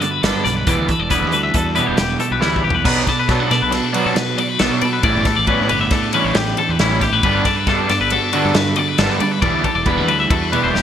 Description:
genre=math rock and midwest emo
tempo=137 BPM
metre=5/4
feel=straight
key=unclear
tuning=A4 = 440 Hz
part: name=clean electric guitar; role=accompaniment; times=0.0-10.8 s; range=G2 to B4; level=-22 LUFS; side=right 5 dB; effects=spring reverb
part: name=twangy electric guitar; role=arpeggios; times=0.0-10.8 s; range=E4 to E5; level=-19 LUFS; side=left 6 dB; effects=lush chorus, digital delay
part: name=raw garage guitar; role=riff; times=0.0-10.8 s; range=B2 to E4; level=-22 LUFS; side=right 1 dB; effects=overdrive, lush chorus
part: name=loose indie drum kit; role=drums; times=0.0-10.8 s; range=crash cymbal, hi-hat, kick drum, ride cymbal, snare drum, toms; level=-21 LUFS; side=equal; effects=gated reverb
part: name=fuzz fingered electric bass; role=bass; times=0.2-10.8 s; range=E1 to B2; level=-24 LUFS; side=equal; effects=overdrive
room=moderate lush hall reverb, RT60 1.9 s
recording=bright 1980s-style digital production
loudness=-14 LUFS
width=side -9 dB against mid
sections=0.0-2.9 A section; 2.9-10.8 B section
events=drum fill 2.4-2.9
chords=0.0 Gmaj9; 0.7 Em9; 2.9 Bm7; 5.0 A9sus4; 7.2 Gmaj9; 9.4 Em9

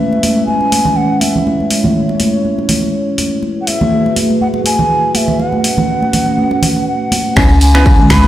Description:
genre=afro house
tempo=122 BPM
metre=4/4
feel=swing 56% on 16ths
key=C# minor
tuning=A4 = 445 Hz
part: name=mellow bansuri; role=melody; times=0.0-8.3 s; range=E5 to B5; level=-17 LUFS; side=equal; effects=vintage 12-bit sampler grit, digital delay
part: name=dark analog pad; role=sustained chords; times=0.0-8.3 s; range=G#3 to C#5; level=-17 LUFS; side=equal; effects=chorus, sidechain pumping
part: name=congas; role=percussion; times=0.1-7.2 s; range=none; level=-16 LUFS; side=right 1 dB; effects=none
part: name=afro-pop drum kit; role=drums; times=0.2-8.3 s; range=finger snaps, hi-hat, toms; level=-18 LUFS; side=equal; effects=overdrive
part: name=buzzing kalimba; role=arpeggios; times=7.4-8.3 s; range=G#3 to C#4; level=-14 LUFS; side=equal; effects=sidechain pumping, digital delay
part: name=barky tine electric piano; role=stabs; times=7.4-8.3 s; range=B3 to C#5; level=-19 LUFS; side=right 1 dB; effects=sidechain pumping
part: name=woody FM bass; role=bass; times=7.4-8.3 s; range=C#2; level=-10 LUFS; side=equal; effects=sidechain pumping
part: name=electronic kick drum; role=drums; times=7.4-8.2 s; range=none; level=-10 LUFS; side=equal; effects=none
part: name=tambourine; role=percussion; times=7.4-8.3 s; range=none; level=-25 LUFS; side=right 3 dB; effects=none
room=moderate lush hall reverb, RT60 2.1 s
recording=played on a big sound system in a bare room, stone room reverb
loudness=-10 LUFS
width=side -13 dB against mid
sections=0.0-7.4 A section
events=none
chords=0.0 C#m7; 3.4 F#m11; 5.4 A69; 7.4 C#m7

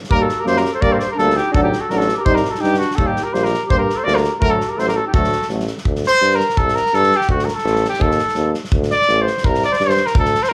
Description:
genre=balkan folk, Balkan brass band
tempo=167 BPM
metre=2/4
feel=swing 56% on 16ths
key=D phrygian dominant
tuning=A4 = 438 Hz
part: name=loose indie drum kit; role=percussion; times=0.0-10.5 s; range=kick drum, snare drum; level=-24 LUFS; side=equal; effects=none
part: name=warm trumpet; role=melody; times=0.1-10.5 s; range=F#4 to D5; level=-20 LUFS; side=equal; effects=none
part: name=warm clarinet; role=second line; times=0.1-5.5 s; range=D4 to Bb4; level=-28 LUFS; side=equal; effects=none
part: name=warm French horn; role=accompaniment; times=0.1-5.6 s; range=A3 to Eb4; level=-26 LUFS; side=equal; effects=none
part: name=warm euphonium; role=accompaniment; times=0.1-5.6 s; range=F#3 to G3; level=-29 LUFS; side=equal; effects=none
part: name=clear tuba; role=bass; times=0.1-10.4 s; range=A1 to G2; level=-23 LUFS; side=equal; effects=none
room=light reverb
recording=band playing live in one room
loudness=-17 LUFS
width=mono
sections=0.1-5.9 A section; 5.9-10.5 B section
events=trumpet solo 5.9-10.5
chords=0.1 Eb; 0.8 Gm; 1.5 D; 2.3 Cm; 3.0 Eb; 3.7 Gm; 4.4 D; 5.9 Gmadd11/D; 6.6 C5; 7.3 D5; 8.0 N.C.; 8.7 D5; 9.4 C5

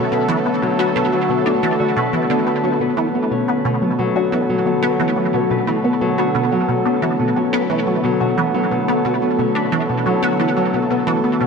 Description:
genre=ambient, sequencer-driven space music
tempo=89 BPM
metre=4/4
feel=straight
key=B minor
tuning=A4 = 438 Hz
part: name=lush unison pad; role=sustained chords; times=0.0-11.5 s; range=D3 to A4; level=-21 LUFS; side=right 2 dB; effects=chorus
part: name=Celtic harp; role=arpeggios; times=0.0-11.5 s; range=B2 to B4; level=-19 LUFS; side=left 4 dB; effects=auto-pan, low-pass filter, tape echo
part: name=resonant blip pluck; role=riff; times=0.1-11.5 s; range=B2 to D4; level=-21 LUFS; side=right 2 dB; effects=phaser, ensemble chorus, tape echo
room=moderate plate reverb, RT60 3.3 s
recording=none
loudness=-16 LUFS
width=side -5 dB against mid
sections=0.0-11.5 A section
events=none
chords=0.0 Bm7

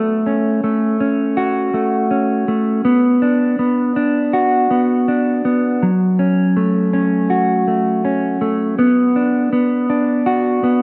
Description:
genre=dream pop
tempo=81 BPM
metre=4/4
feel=straight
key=F# minor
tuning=A4 = 439 Hz
part: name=mellow electric guitar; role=solo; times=0.0-10.8 s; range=F#3 to F#4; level=-16 LUFS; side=equal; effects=subtle chorus, digital delay
room=moderate lush hall reverb, RT60 2.0 s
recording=none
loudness=-16 LUFS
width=mono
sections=0.0-10.8 A section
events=none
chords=0.0 F#m; 2.9 Bm; 5.8 F#m; 8.8 Bm

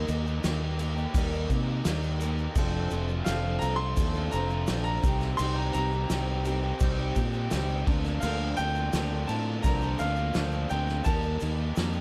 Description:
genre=folk rock and heartland rock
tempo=85 BPM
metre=4/4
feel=straight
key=unclear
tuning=A4 = 438 Hz
part: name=clear baby grand piano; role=melody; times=0.0-12.0 s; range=Eb5 to C6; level=-36 LUFS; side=equal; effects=none
part: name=picked steel-string acoustic guitar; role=accompaniment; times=0.0-12.0 s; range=C3 to Bb4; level=-37 LUFS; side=equal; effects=none
part: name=overdriven electric guitar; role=riff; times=0.0-12.0 s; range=F2 to G4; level=-39 LUFS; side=equal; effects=none
part: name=fingered electric bass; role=bass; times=0.0-12.0 s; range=F1 to C3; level=-32 LUFS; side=equal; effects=none
part: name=natural country drum kit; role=drums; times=0.1-11.9 s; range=crash cymbal, kick drum, snare drum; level=-34 LUFS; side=equal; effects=none
part: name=egg shaker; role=percussion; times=0.1-12.0 s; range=none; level=-50 LUFS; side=equal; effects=none
room=studio ambience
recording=dark, warm production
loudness=-28 LUFS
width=mono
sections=0.0-12.0 A section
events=none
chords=0.0 Eb; 2.6 F6; 5.0 Cm; 7.9 Bbadd9/D; 11.1 Eb

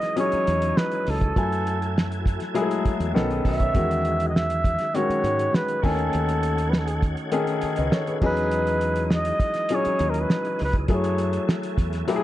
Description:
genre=lush 1970s-style soul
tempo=101 BPM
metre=4/4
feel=straight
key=unclear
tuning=A4 = 440 Hz
part: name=breathy flugelhorn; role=melody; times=0.0-11.5 s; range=G#4 to E5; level=-26 LUFS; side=right 1 dB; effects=analog delay
part: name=warm grand piano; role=accompaniment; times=0.0-12.2 s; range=D#3 to G#5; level=-26 LUFS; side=left 4 dB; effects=none
part: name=tonewheel organ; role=sustained chords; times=0.0-12.2 s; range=D#3 to G#5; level=-34 LUFS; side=right 1 dB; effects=fast rotary speaker, chorus vibrato
part: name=cloth-damped thuddy drum kit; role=drums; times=0.0-12.2 s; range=crash cymbal, hi-hat, kick drum, snare drum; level=-24 LUFS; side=right 1 dB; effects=none
part: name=fingered electric bass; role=bass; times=0.3-12.0 s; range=B1 to G#2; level=-27 LUFS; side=equal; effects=none
part: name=electric guitar through a small old amp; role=riff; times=3.1-3.9 s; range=D#4 to C#5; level=-35 LUFS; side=right 8 dB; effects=none
room=light reverb, studio reverb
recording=nothing above 10.3 kHz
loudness=-21 LUFS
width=side -14 dB against mid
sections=0.0-12.2 A section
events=none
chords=0.0 Emaj13; 1.4 F#m9; 3.2 B9; 3.7 Emaj13; 5.8 B13; 8.2 Emaj13; 10.9 F#m9

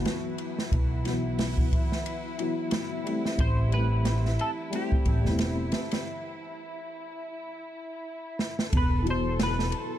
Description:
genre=trip hop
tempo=90 BPM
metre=4/4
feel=swing 58% on 16ths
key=E minor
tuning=A4 = 439 Hz
part: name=semi-hollow electric guitar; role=melody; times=0.0-10.0 s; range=F#4 to C5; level=-35 LUFS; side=equal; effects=analog chorus, dub echo
part: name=felt-muted upright piano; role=accompaniment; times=0.0-10.0 s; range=B2 to E4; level=-32 LUFS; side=left 2 dB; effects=harmonic tremolo, vintage 12-bit sampler grit, tape echo
part: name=muted studio violin section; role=sustained chords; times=0.0-10.0 s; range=E4 to A4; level=-38 LUFS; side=equal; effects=none
part: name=upright bass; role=bass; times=0.0-9.7 s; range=E1 to B1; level=-27 LUFS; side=equal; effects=none
part: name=bowed-like drone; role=texture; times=0.0-6.1 s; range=E3 to F#5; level=-42 LUFS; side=equal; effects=built-in reverb
part: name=open jazz drum kit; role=drums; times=0.1-9.9 s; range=hi-hat, kick drum, ride cymbal, snare drum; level=-28 LUFS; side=right 1 dB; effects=none
room=studio reverb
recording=dark, warm production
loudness=-25 LUFS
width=side -12 dB against mid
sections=0.0-8.7 A section; 8.7-10.0 B section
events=break 6.1-8.7; drum fill 8.4-8.7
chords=0.0 Esus2; 0.7 Bsus4; 3.4 Am7; 6.1 N.C.; 8.7 Esus2

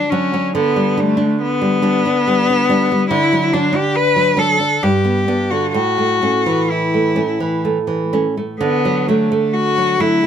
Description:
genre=romantic duo for cello and classical guitar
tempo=61-72 BPM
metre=3/4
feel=rubato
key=D major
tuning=A4 = 439 Hz
part: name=clear cello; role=melody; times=0.0-10.3 s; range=A3 to B4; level=-16 LUFS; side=left 3 dB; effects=none
part: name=nylon-string guitar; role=accompaniment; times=0.0-10.3 s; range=G2 to D4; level=-17 LUFS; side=right 2 dB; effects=none
room=light reverb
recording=close, detailed microphones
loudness=-14 LUFS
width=side -8 dB against mid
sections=0.0-10.3 A section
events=none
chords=0.0 D; 0.6 G/D; 3.1 D; 4.8 G; 5.8 A; 8.6 D

